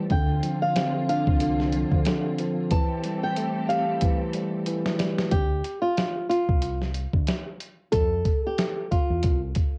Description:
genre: hip hop, boom-bap hip-hop.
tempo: 92 BPM.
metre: 4/4.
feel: swing 57% on 16ths.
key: unclear.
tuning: A4 = 441 Hz.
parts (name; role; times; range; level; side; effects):
bright tine electric piano; accompaniment; 0.0-5.3 s; D3 to G4; -29 LUFS; equal; cassette tape, high-pass filter, low-pass filter.
muted studio string section; sustained chords; 0.0-5.3 s; D3 to A4; -38 LUFS; equal; high-pass filter, low-pass filter, cassette tape.
flamenco guitar; melody; 0.1-9.4 s; F4 to A5; -29 LUFS; equal; high-pass filter, low-pass filter, cassette tape, tape echo.
deep dub fingered electric bass; bass; 0.1-9.5 s; C2 to F2; -31 LUFS; equal; none.
dusty soul sampler-style drum kit; drums; 0.1-9.7 s; hi-hat, kick drum, snare drum; -28 LUFS; equal; cassette tape.
room: moderate booth ambience, RT60 0.2 s.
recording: home recording on cassette.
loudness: -25 LUFS.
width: mono.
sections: 0.0-5.3 A section; 5.3-9.8 B section.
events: drum fill 2.7-5.3.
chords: 0.1 Dm7; 2.7 Fmaj9/E (rootless); 5.3 Csus24; 7.9 F5.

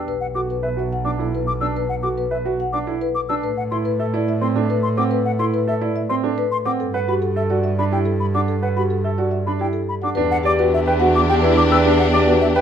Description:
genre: classical, minimalist pattern music.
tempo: 107 BPM.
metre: 3/4.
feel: straight.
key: A dorian.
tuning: A4 = 440 Hz.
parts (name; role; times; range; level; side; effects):
marimba with soft mallets; melody; 0.0-12.6 s; G4 to A5; -23 LUFS; left 8 dB; none.
warm concert grand piano; arpeggios; 0.0-12.6 s; C4 to D5; -23 LUFS; right 6 dB; none.
rich double bass; bass; 0.1-12.6 s; B1 to A2; -22 LUFS; right 2 dB; none.
mellow silver concert flute; arpeggios; 0.2-12.6 s; E5 to E6; -24 LUFS; left 3 dB; none.
clear French horn; second line; 10.2-12.6 s; D4; -23 LUFS; right 5 dB; none.
rich studio string section; sustained chords; 10.2-12.6 s; D4 to G4; -24 LUFS; left 4 dB; none.
room: light reverb.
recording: none.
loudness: -17 LUFS.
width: side -8 dB against mid.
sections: 0.0-10.2 A section; 10.2-12.6 B section.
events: none.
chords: 0.1 Bm7; 3.4 Amadd9; 6.8 G69; 10.2 Em7.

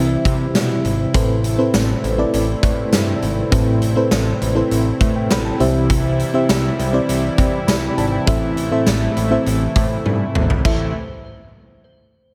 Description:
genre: 1980s-style pop.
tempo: 101 BPM.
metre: 4/4.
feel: straight.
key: A minor.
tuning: A4 = 440 Hz.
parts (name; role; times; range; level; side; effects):
FM electric piano with tremolo; accompaniment; 0.0-10.9 s; A1 to B5; -22 LUFS; equal; none.
brassy analog pad; sustained chords; 0.0-10.9 s; C3 to E4; -27 LUFS; equal; chorus.
fat analog bass; bass; 0.0-10.9 s; G#1 to C3; -23 LUFS; equal; none.
big rock drum kit; drums; 0.3-10.8 s; crash cymbal, hi-hat, kick drum, snare drum, tambourine, toms; -23 LUFS; equal; none.
glassy synth bell; second line; 10.7-10.9 s; C5; -41 LUFS; equal; chorus, tape echo.
room: light reverb.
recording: none.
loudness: -18 LUFS.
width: mono.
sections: 0.0-10.6 A section; 10.6-12.3 B section.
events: drum fill 10.1-10.6.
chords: 0.0 C; 1.1 Amadd9; 8.3 Am.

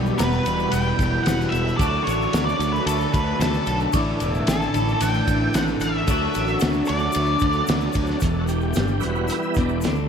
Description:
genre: psychedelic rock.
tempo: 112 BPM.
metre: 4/4.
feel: straight.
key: unclear.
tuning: A4 = 440 Hz.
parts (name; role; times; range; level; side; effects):
bright tonewheel organ; sustained chords; 0.0-9.8 s; E3 to B4; -30 LUFS; right 2 dB; slow rotary speaker, overdrive, chorus vibrato.
twelve-string electric guitar; riff; 0.0-10.1 s; E2 to G4; -24 LUFS; equal; phaser, double-tracked left and right.
fuzz fingered electric bass; bass; 0.0-10.1 s; E1 to D2; -26 LUFS; equal; overdrive.
egg shaker; percussion; 0.1-10.0 s; none; -41 LUFS; left 12 dB; none.
octave-fuzz lead guitar; melody; 0.2-7.6 s; A4 to G5; -26 LUFS; equal; distortion, tape echo.
cloth-damped thuddy drum kit; drums; 0.2-10.0 s; hi-hat, kick drum, ride cymbal, snare drum; -26 LUFS; equal; none.
room: moderate plate reverb, RT60 2.2 s.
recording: dreamy mix soaked in reverb.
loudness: -19 LUFS.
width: side -7 dB against mid.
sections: 0.0-8.2 A section; 8.2-10.1 B section.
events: tonewheel organ solo 8.2-10.1.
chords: 0.0 Em; 1.8 D; 3.9 Asus4; 6.1 D; 8.2 Em.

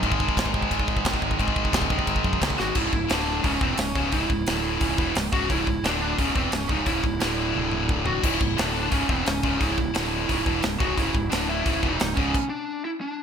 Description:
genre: heavy metal.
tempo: 175 BPM.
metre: 4/4.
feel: straight.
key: unclear.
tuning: A4 = 440 Hz.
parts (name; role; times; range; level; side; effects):
distorted electric guitar; riff; 0.0-12.3 s; C#2 to G#3; -28 LUFS; left 14 dB; overdrive.
heavy high-gain guitar; riff; 0.0-12.3 s; C#2 to G#3; -29 LUFS; right 12 dB; distortion.
fuzz fingered electric bass; bass; 0.0-12.3 s; C#1 to F#2; -31 LUFS; equal; overdrive.
modern studio drum kit; drums; 0.0-12.4 s; china cymbal, crash cymbal, hi-hat, kick drum, snare drum, toms; -26 LUFS; equal; gated reverb.
lead guitar through a small cranked amp; melody; 2.6-13.2 s; B#3 to F#4; -28 LUFS; right 1 dB; overdrive.
room: light reverb.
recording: bright 1980s-style digital production.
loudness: -22 LUFS.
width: side -7 dB against mid.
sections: 0.0-2.8 A section; 2.8-13.2 B section.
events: drum fill 2.6, 7.6-8.2; stop 12.3-13.2.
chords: 0.0 G#5; 2.8 C#m; 3.1 D5; 3.4 C#m; 4.5 D5; 4.8 C#m; 5.8 D5; 6.2 C#m; 7.2 D5; 8.2 C#m; 8.6 D5; 8.9 C#m; 10.0 D5; 10.3 C#m; 11.3 D5; 11.7 C#m; 12.7 N.C..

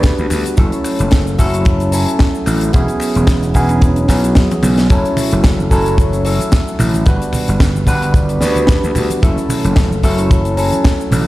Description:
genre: nu-disco, nu disco.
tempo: 111 BPM.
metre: 4/4.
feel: swing 55% on 16ths.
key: F# minor.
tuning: A4 = 440 Hz.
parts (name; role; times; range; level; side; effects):
barky tine electric piano; accompaniment; 0.0-11.3 s; F#3 to B4; -17 LUFS; equal; phaser, digital delay.
gritty slap bass; bass; 0.0-11.3 s; E1 to D2; -16 LUFS; equal; overdrive.
kick drum; drums; 0.0-11.0 s; none; -12 LUFS; equal; none.
tight funk drum kit; drums; 0.0-11.2 s; cabasa, finger snaps, hi-hat, snare drum, toms; -21 LUFS; equal; none.
tambourine and congas; percussion; 4.9-11.2 s; none; -24 LUFS; right 2 dB; none.
room: little or no reverb.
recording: played on a big sound system in a bare room, stone room reverb.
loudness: -11 LUFS.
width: side -17 dB against mid.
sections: 0.0-11.3 A section.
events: drum fill 4.5-4.9.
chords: 0.0 Gmaj7; 0.6 F#m7; 2.7 E69; 4.9 F#m7; 7.1 Gmaj7; 9.2 F#m7.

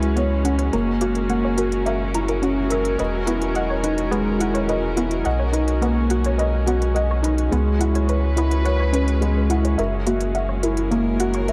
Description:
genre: piano and strings electronica.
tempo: 106 BPM.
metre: 4/4.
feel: straight.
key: unclear.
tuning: A4 = 440 Hz.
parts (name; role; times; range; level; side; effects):
warm chamber string section; sustained chords; 0.0-11.5 s; G#3 to B4; -30 LUFS; equal; none.
felt-muted upright piano; riff; 0.0-11.5 s; G#3 to E5; -25 LUFS; equal; digital delay.
round analog bass; bass; 0.0-11.5 s; E1 to C#2; -25 LUFS; equal; none.
electronic hi-hat; drums; 0.0-11.5 s; none; -36 LUFS; equal; none.
analog pluck; arpeggios; 0.2-11.5 s; A#3 to A#5; -32 LUFS; equal; chorus, digital delay.
room: moderate lush hall reverb, RT60 1.8 s, small room ambience.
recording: dark, warm production.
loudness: -21 LUFS.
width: mono.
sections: 0.0-11.5 A section.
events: none.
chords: 0.0 C#m7; 0.7 F#7; 3.0 Emaj7; 5.3 Bmaj7; 7.5 C#m7; 9.8 F#7.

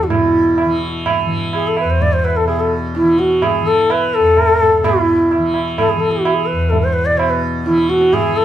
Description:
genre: indian classical, Hindustani.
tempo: 127 BPM.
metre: 5/4.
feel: straight.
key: E major.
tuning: A4 = 442 Hz.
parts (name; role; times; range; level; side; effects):
breathy mellow bansuri; melody; 0.0-8.4 s; E4 to D5; -14 LUFS; equal; none.
tanpura; drone; 0.0-8.4 s; E2 to E3; -20 LUFS; left 1 dB; none.
tabla; percussion; 0.1-8.3 s; none; -20 LUFS; right 6 dB; none.
room: wet studio reverb, RT60 0.5 s.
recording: band playing live in one room.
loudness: -13 LUFS.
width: side -11 dB against mid.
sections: 0.0-8.4 A section.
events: none.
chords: none.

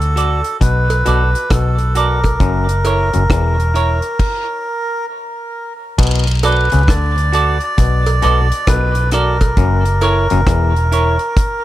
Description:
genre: roots reggae.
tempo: 67 BPM.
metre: 4/4.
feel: swing 64% on 16ths.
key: B minor.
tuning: A4 = 440 Hz.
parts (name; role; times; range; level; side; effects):
melodica; melody; 0.0-11.6 s; A4 to D5; -19 LUFS; right 1 dB; tape echo.
vintage muted fingered electric bass; bass; 0.0-11.2 s; E1 to D2; -15 LUFS; equal; none.
deep reggae drum kit; drums; 0.0-11.6 s; crash cymbal, hi-hat, kick drum, rim click; -17 LUFS; equal; none.
semi-hollow electric guitar; accompaniment; 0.2-11.2 s; E4 to D5; -22 LUFS; right 4 dB; wide subtle chorus, tape echo.
clav; riff; 0.6-10.7 s; E2 to D3; -23 LUFS; left 6 dB; none.
cowbell and jawbone-type rattle; percussion; 0.9-10.3 s; none; -25 LUFS; right 4 dB; none.
room: light reverb, small room ambience.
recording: none.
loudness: -12 LUFS.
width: side -14 dB against mid.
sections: 0.0-6.0 A section; 6.0-11.6 B section.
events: stop 4.2-6.0.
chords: 0.0 Bm7; 2.4 F#7; 6.0 Bm7; 9.6 F#7.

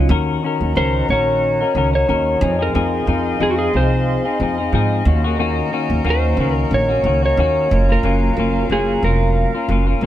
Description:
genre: indie pop, bedroom pop.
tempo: 91 BPM.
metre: 4/4.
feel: swing 55% on 16ths.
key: Eb dorian.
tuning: A4 = 435 Hz.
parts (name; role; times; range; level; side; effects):
clean electric guitar; accompaniment; 0.0-10.1 s; Eb3 to Bb4; -20 LUFS; left 4 dB; vibrato effect.
upright bass; bass; 0.0-10.1 s; F1 to Ab2; -18 LUFS; right 1 dB; none.
hollow soft pad; sustained chords; 0.1-10.1 s; Ab4 to C6; -26 LUFS; right 1 dB; chorus.
electric slide guitar; melody; 0.8-9.7 s; Gb4 to Db5; -20 LUFS; right 1 dB; none.
room: light reverb.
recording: band playing live in one room.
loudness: -15 LUFS.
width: side -12 dB against mid.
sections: 0.1-10.1 A section.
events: none.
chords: 0.1 Ebm7; 2.4 Fm7; 5.1 Ebm7; 7.7 Gbmaj7.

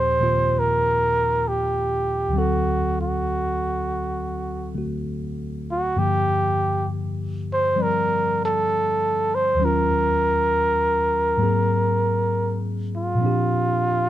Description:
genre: jazz ballad.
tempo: 66 BPM.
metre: 4/4.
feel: swing 68% on 8ths.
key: unclear.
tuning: A4 = 440 Hz.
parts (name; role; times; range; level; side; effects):
breathy trumpet; melody; 0.0-14.1 s; F4 to C5; -21 LUFS; right 1 dB; none.
tine electric piano; accompaniment; 0.0-14.1 s; D2 to D5; -24 LUFS; left 1 dB; none.
room: light reverb.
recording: close, detailed microphones.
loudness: -20 LUFS.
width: side -13 dB against mid.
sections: 0.0-14.1 A section.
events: none.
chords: 0.0 Eb69; 2.3 D7; 6.0 Gm9; 9.6 Ebm7; 11.4 Ab9; 13.2 Bb69.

